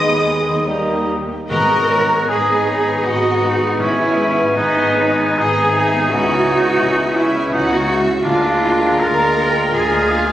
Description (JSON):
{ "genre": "classical", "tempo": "70-86 BPM", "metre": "3/4", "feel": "rubato", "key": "G# minor", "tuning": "A4 = 440 Hz", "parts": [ { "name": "rich symphonic violin section", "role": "melody", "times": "0.0-10.3 s", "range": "G#5 to D#6", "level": "-30 LUFS", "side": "left 2 dB", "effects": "none" }, { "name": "hollow concert flute", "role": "second line", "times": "0.0-10.3 s", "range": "D#5 to B5", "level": "-25 LUFS", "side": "left 1 dB", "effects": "none" }, { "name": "warm clarinet", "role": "second line", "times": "0.0-10.3 s", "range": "D#5 to A#5", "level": "-24 LUFS", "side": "left 1 dB", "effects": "none" }, { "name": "warm oboe", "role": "second line", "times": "0.0-10.3 s", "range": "B3 to D#5", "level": "-20 LUFS", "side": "equal", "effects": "none" }, { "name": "warm symphonic violin section", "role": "second line", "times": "0.0-10.3 s", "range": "B4 to G#5", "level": "-29 LUFS", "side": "left 2 dB", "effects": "none" }, { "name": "mellow bassoon", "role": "accompaniment", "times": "0.0-10.3 s", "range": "G3 to B3", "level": "-24 LUFS", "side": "equal", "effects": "none" }, { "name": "warm symphonic viola section", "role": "accompaniment", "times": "0.0-10.3 s", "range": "G#3 to G#4", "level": "-27 LUFS", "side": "right 2 dB", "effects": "none" }, { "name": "clear trombone section", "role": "sustained chords", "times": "0.0-1.2 s", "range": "D#3 to G#3", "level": "-29 LUFS", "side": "right 2 dB", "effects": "none" }, { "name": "mellow French horn section", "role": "sustained chords", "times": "0.0-10.3 s", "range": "G#3 to E#4", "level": "-28 LUFS", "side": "left 2 dB", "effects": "none" }, { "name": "concert harp", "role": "arpeggios", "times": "0.0-10.3 s", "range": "G#2 to B4", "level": "-28 LUFS", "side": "left 4 dB", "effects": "none" }, { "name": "warm trumpet section", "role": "stabs", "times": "0.0-1.1 s", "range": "D#5", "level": "-28 LUFS", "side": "equal", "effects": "none" }, { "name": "warm studio double bass section", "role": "bass", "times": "0.0-10.3 s", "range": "G#1 to D#2", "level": "-26 LUFS", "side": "right 1 dB", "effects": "none" }, { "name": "warm symphonic cello section", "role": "bass", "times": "0.0-10.3 s", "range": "D#2 to A#4", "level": "-19 LUFS", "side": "right 2 dB", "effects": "none" }, { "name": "timpani", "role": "percussion", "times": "0.0-4.9 s", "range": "G#2 to D#3", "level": "-32 LUFS", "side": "left 1 dB", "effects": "none" } ], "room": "moderate concert hall reverb, RT60 2.4 s", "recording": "recorded on a phone in the room, club reverb", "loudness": "-14 LUFS", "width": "side -12 dB against mid", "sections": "0.0-1.5 A section; 1.5-10.3 B section", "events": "none", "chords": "0.0 G#m/D#; 0.7 D#; 1.5 G#m; 6.1 C#m7; 8.2 A#7/D" }